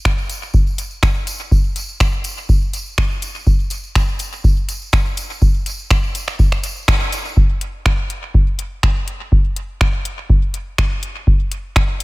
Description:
techno; 123 BPM; 4/4; straight
booming analog drum machine; drums; 0.1-12.0 s; finger snaps, hi-hat; -22 LUFS; right 1 dB; dub echo
electronic kick drum; drums; 0.1-11.9 s; -15 LUFS; equal
tambourine; percussion; 0.1-7.3 s; -31 LUFS; right 1 dB
little or no reverb; -15 LUFS; side -22 dB against mid
0.0-7.4 A section; 7.4-12.0 A section
band accent 6.9
0.05 0.54 1.03 | 1.51 2.00 2.49 2.98 | 3.47 3.95 4.44 4.93 | 5.42 5.91 6.39 6.88 | 7.37 7.86 8.34 8.83 | 9.32 9.81 10.29 10.78 | 11.27 11.76

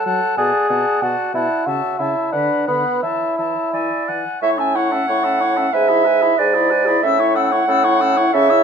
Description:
quick classical-period movement for wind quintet; 92 BPM; 2/4; rubato; A major; A4 = 440 Hz
concert flute; melody; 0.0-8.6 s; G#5 to E6; -24 LUFS; left 9 dB
mellow oboe; second line; 0.0-8.6 s; G#4 to F#5; -25 LUFS; left 5 dB
dark clarinet; accompaniment; 0.0-8.6 s; B4 to G#5; -19 LUFS; right 4 dB
warm bassoon; bass; 0.0-8.6 s; G#2 to A4; -20 LUFS; right 1 dB
dark French horn; accompaniment; 0.1-8.6 s; B2 to G#4; -26 LUFS; left 2 dB
moderate large studio reverb, RT60 1.3 s; minimal, uncompressed stereo recording; -15 LUFS; side -6 dB against mid
0.0-4.4 A section; 4.4-8.6 B section
0.4 Bm7; 1.7 A/C#; 2.3 Bm/D; 3.0 A/E; 3.7 E; 4.4 A; 5.7 E/G#; 7.0 A
| 0.38 1.02 | 1.66 2.33 | 3.02 3.73 | 4.42 5.09 | 5.74 6.39 | 7.04 7.68 | 8.33

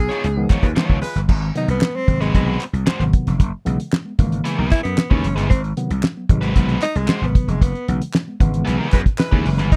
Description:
funk; 114 BPM; 4/4; straight; A4 = 440 Hz
breathy tenor saxophone; melody; 0.0-9.8 s; Ab3 to Ab4; -26 LUFS; equal
gritty slap bass; bass; 0.0-9.8 s; F1 to Gb2; -23 LUFS; equal; overdrive
biting overdriven guitar; accompaniment; 0.1-9.7 s; Ab3 to Db5; -28 LUFS; equal
cloth-damped thuddy drum kit; drums; 0.1-9.8 s; crash cymbal, hi-hat, kick drum, snare drum; -19 LUFS; equal
mellow tine electric piano; stabs; 0.4-9.7 s; C3 to Db4; -26 LUFS; equal
group handclap; percussion; 0.5-9.3 s; -34 LUFS; equal
clear horn section; second line; 0.6-1.2, 8.9-9.6 s; Ab3 to Cb5; -32 LUFS; equal; tape echo
little or no reverb; dark, warm production; -19 LUFS; mono
0.0-1.3 A section; 1.3-9.8 B section
tenor saxophone solo 1.3-9.8; band accent 7.6-9.7
0.0 Db9; 1.3 Ab7#9; 3.4 Gb9sus4; 5.5 Ab7#9; 7.6 Gb9sus4
0.24 0.77 | 1.29 1.82 2.35 2.87 | 3.40 3.93 4.45 4.98 | 5.51 6.03 6.56 7.09 | 7.61 8.14 8.67 9.19 | 9.72

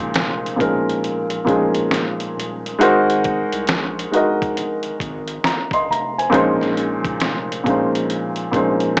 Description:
lo-fi hip hop; 68 BPM; 4/4; swing 64% on 16ths; Bb minor; A4 = 440 Hz
felt-muted upright piano; accompaniment; 0.0-9.0 s; Bb2 to C6; -17 LUFS; equal; cassette tape, low-pass filter
saturated sub bass; bass; 0.0-8.9 s; Eb1 to C2; -32 LUFS; equal
trip hop sampler-style drum kit; drums; 0.1-9.0 s; hi-hat, kick drum, snare drum; -23 LUFS; equal; vintage 12-bit sampler grit
wet small room reverb, RT60 0.5 s; cassette tape, small speaker sound; -17 LUFS; side -36 dB against mid
0.0-9.0 A section
0.0 Bbm11; 2.8 Ab7; 6.3 Bbm11
0.15 1.03 1.91 | 2.79 3.68 4.56 5.44 | 6.32 7.21 8.09 8.97

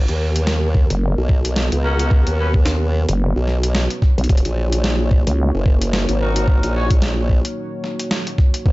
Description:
glitch hop; 110 BPM; 4/4; swing 58% on 16ths; A4 = 440 Hz
dark analog pad; sustained chords; 0.0-8.7 s; A#3 to C#5; -27 LUFS; equal; chorus, sidechain pumping
formant-sweep wobble bass; bass; 0.0-8.7 s; D#1 to D#2; -19 LUFS; equal; chorus
boom bap sampler-style drum kit; drums; 0.1-8.6 s; hi-hat, snare drum; -24 LUFS; equal
electronic kick drum; drums; 0.7-8.7 s; -15 LUFS; equal
vowel-sweep wobble bass; bass; 0.9-5.5 s; F#1 to C#2; -16 LUFS; equal; chorus
mellow horn section; stabs; 1.8-2.5, 6.2-6.9 s; B3 to C#5; -26 LUFS; left 1 dB; sidechain pumping, dub echo
little or no reverb; dark, warm production, nothing above 7.8 kHz; -15 LUFS; side -20 dB against mid
0.0-8.7 A section
0.0 G#m11 (rootless); 4.3 D#m7
0.48 1.02 1.57 | 2.11 2.66 3.20 3.75 | 4.29 4.84 5.38 5.93 | 6.48 7.02 7.57 8.11 | 8.66

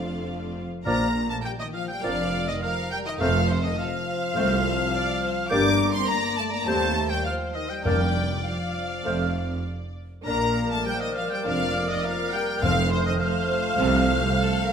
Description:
quick classical-period movement for symphony orchestra; 102 BPM; 4/4; rubato; Bb major; A4 = 440 Hz
rich studio violin section; melody; 0.0-14.7 s; C5 to D6; -29 LUFS; left 2 dB
mellow clarinet; second line; 0.0-14.7 s; D4 to D5; -36 LUFS; left 1 dB
rich studio violin section; second line; 0.0-14.7 s; A4 to F5; -34 LUFS; equal
warm studio viola section; accompaniment; 0.0-14.1 s; A3 to Bb4; -34 LUFS; equal
rich studio double bass section; bass; 0.0-14.3 s; F1 to Eb2; -31 LUFS; right 3 dB
warm studio cello section; bass; 0.0-14.3 s; C2 to Bb2; -30 LUFS; right 2 dB
clear oboe; second line; 0.9-14.7 s; C5 to D6; -32 LUFS; equal
hollow small flute group; second line; 0.9-14.7 s; F6 to G6; -34 LUFS; right 3 dB
dark bassoon; accompaniment; 0.9-14.7 s; F3 to Bb3; -32 LUFS; right 2 dB
dark French horn section; sustained chords; 0.9-14.7 s; C3 to D4; -31 LUFS; left 5 dB
timpani; percussion; 0.9-1.7, 7.9-8.7, 12.6-13.5 s; F2 to Bb2; -29 LUFS; left 1 dB
wet recital hall reverb, RT60 1.5 s; -22 LUFS; side -7 dB against mid
0.9-14.7 A section
0.0 F; 0.9 Bb; 3.2 F; 5.5 Gm; 6.7 Cm/Eb; 7.9 Bb/F; 9.0 F; 10.3 Bb; 12.6 F
0.26 | 0.86 1.45 2.04 2.63 | 3.21 3.78 4.36 4.94 | 5.51 6.09 6.67 7.26 | 7.85 8.45 9.05 9.65 | 10.26 10.86 11.46 12.04 | 12.63 13.22 13.80 14.37

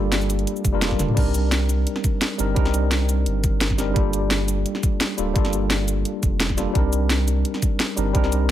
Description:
liquid drum and bass; 172 BPM; 4/4; straight; C dorian; A4 = 440 Hz
mellow tine electric piano; accompaniment; 0.0-8.5 s; G3 to Bb4; -24 LUFS; equal; overdrive, fast stereo tremolo, dub echo
saturated sub bass; bass; 0.0-8.5 s; D1 to C2; -23 LUFS; equal
drum and bass drum kit; drums; 0.1-8.4 s; crash cymbal, hi-hat, shaker, snare drum, toms; -25 LUFS; equal; overdrive
electronic kick drum; drums; 0.6-8.2 s; -22 LUFS; equal; overdrive
digital ambience; -19 LUFS; side -12 dB against mid
0.0-8.5 A section
drum fill 0.9
0.0 Gm9; 1.2 Cm9; 4.0 Gm9; 6.8 Cm9
0.12 0.47 0.82 | 1.17 1.52 1.87 2.22 | 2.56 2.91 3.26 3.61 | 3.96 4.31 4.66 5.01 | 5.36 5.71 6.05 6.40 | 6.75 7.10 7.45 7.80 | 8.15 8.49

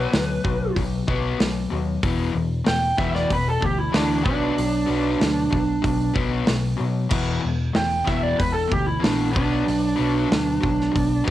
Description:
hard rock; 94 BPM; 4/4; straight; E minor; A4 = 440 Hz
lead guitar through a small cranked amp; melody; 0.0-11.2 s; D4 to G5; -23 LUFS; right 3 dB; overdrive, cassette tape, tape echo
overdriven electric guitar; riff; 0.0-11.3 s; E2 to B3; -25 LUFS; left 6 dB; cassette tape
picked electric bass; bass; 0.0-11.3 s; E1 to B2; -27 LUFS; equal
big rock drum kit; drums; 0.1-11.3 s; crash cymbal, hi-hat, kick drum, snare drum; -26 LUFS; right 1 dB
light reverb; home recording on cassette; -19 LUFS; side -13 dB against mid
0.0-11.3 A section
lead electric guitar solo 0.0-11.3
0.0 Bm; 2.0 E5; 4.3 Bm; 7.1 E5; 9.4 Bm
0.13 0.76 1.40 | 2.04 2.67 3.31 3.94 | 4.58 5.22 5.85 6.49 | 7.13 7.77 8.40 9.04 | 9.68 10.31 10.95

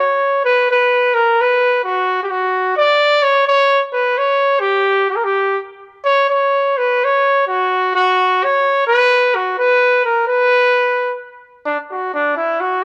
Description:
mexican folk; 85 BPM (dotted quarters); 6/8; rubato; B harmonic minor; A4 = 440 Hz
warm trumpet; solo; 0.0-12.8 s; D4 to D5; -15 LUFS; equal
light reverb, small room ambience; -15 LUFS; mono
0.4-11.7 A section; 11.7-12.8 B section
| 0.42 1.13 | 1.83 2.52 | 3.21 3.90 | 4.60 5.32 | 6.03 6.74 | 7.45 8.15 | 8.85 9.54 | 10.24 10.94 | 11.65 12.36

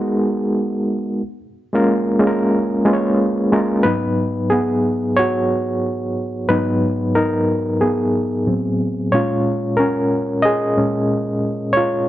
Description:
R&B; 91 BPM; 4/4; swing 62% on 16ths; G# dorian; A4 = 439 Hz
overdriven reed electric piano; solo; 0.0-12.1 s; G#2 to D#5; -16 LUFS; equal; tremolo
moderate echo chamber reverb, RT60 1.3 s, digital ambience; nothing above 7.6 kHz; -16 LUFS; side -14 dB against mid
0.0-3.8 A section; 3.8-12.1 B section
reed electric piano solo 3.8-12.1
0.0 G#m9; 1.2 A#m7; 3.8 G#m7; 8.5 Am69; 9.1 A#m7
0.55 | 1.21 1.87 2.53 3.19 | 3.85 4.51 5.17 5.83 | 6.48 7.14 7.80 8.46 | 9.12 9.78 10.44 11.10 | 11.76

